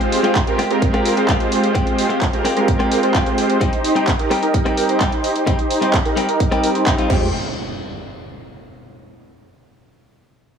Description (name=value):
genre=EDM, festival progressive house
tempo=129 BPM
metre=4/4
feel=straight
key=F minor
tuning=A4 = 443 Hz
part: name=supersaw chords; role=riff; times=0.0-7.3 s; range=Ab3 to C5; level=-18 LUFS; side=right 1 dB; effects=sidechain pumping, low-pass filter, digital delay
part: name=pop drum kit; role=drums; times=0.0-7.2 s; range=crash cymbal, handclaps, hi-hat, rim click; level=-24 LUFS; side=right 1 dB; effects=none
part: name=direct-recorded clean electric guitar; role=accompaniment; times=0.2-7.3 s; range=G3 to G4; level=-23 LUFS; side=left 3 dB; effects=sidechain pumping, digital delay
part: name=electronic kick drum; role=drums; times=0.4-7.2 s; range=none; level=-20 LUFS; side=equal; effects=overdrive
part: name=fat analog bass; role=bass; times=7.1-7.3 s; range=F1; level=-25 LUFS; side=right 1 dB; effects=none
part: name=impact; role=sound effects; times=7.1-9.0 s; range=none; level=-29 LUFS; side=right 1 dB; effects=none
room=light reverb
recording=none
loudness=-15 LUFS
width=side -7 dB against mid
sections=0.0-7.3 A section; 7.3-9.2 B section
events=filter sweep on supersaw synth 0.0-7.3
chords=0.0 Fmadd9; 3.6 Cm; 7.1 Fmadd9; 7.3 N.C.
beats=0.36 0.82 1.29 | 1.75 2.22 2.68 3.15 | 3.61 4.08 4.54 5.01 | 5.47 5.94 6.40 6.87 | 7.33 7.80 8.26 8.73